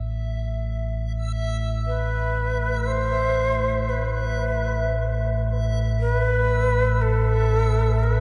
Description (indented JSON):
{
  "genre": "dark ambient drone",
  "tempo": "free time",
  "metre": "none",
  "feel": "none",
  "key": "A minor",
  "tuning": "A4 = 440 Hz",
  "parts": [
    { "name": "deep rumbling drone", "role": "drone", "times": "0.0-8.2 s", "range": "A1 to A2", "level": "-25 LUFS", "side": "equal", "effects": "built-in reverb, phaser, subtle chorus" },
    { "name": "backwards swelling texture", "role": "texture", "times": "0.0-8.2 s", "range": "E5", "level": "-35 LUFS", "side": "equal", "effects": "built-in reverb" },
    { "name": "breathy bright shakuhachi", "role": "melody", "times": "1.9-8.2 s", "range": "A4 to C5", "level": "-27 LUFS", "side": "equal", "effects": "diffuse ambient delay" }
  ],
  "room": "wet cathedral reverb, RT60 5.8 s",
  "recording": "nothing above 10.8 kHz",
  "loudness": "-23 LUFS",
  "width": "mono",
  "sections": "0.0-8.2 A section",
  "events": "fade-in on synth drone 0.0-8.2",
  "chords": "0.0 Asus2",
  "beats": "free time"
}